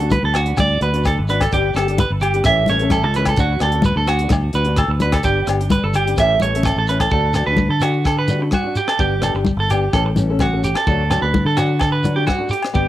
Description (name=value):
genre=highlife guitar band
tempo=128 BPM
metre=4/4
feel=straight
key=D major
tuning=A4 = 440 Hz
part: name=nylon-string guitar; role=accompaniment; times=0.0-12.9 s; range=E3 to A4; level=-25 LUFS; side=left 5 dB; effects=cassette tape, plate reverb
part: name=clean electric guitar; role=arpeggios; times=0.0-12.9 s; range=F#4 to E5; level=-20 LUFS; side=right 4 dB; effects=cassette tape, analog delay, plate reverb
part: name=fingered electric bass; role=bass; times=0.0-12.9 s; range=G1 to D3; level=-20 LUFS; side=equal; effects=none
part: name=tight funk drum kit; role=drums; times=0.0-12.9 s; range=hi-hat, kick drum, rim click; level=-24 LUFS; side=equal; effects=cassette tape
part: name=congas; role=percussion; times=0.1-12.8 s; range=none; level=-22 LUFS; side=left 3 dB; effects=none
part: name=shekere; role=percussion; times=0.1-12.9 s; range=none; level=-26 LUFS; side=right 1 dB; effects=none
part: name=agogo bells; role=percussion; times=0.3-12.7 s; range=none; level=-27 LUFS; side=left 5 dB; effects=none
room=light reverb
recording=home recording on cassette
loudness=-15 LUFS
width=side -13 dB against mid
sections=0.0-7.1 A section; 7.1-12.9 B section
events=none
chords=0.0 D; 1.5 G; 2.4 A; 3.4 D; 5.2 G; 6.2 A; 7.1 D; 9.0 G; 9.9 A; 10.9 D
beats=0.12 0.58 1.05 | 1.52 1.98 2.45 2.92 | 3.38 3.85 4.32 4.78 | 5.25 5.72 6.18 6.65 | 7.12 7.59 8.05 8.52 | 8.99 9.46 9.93 10.40 | 10.87 11.34 11.80 12.27 | 12.74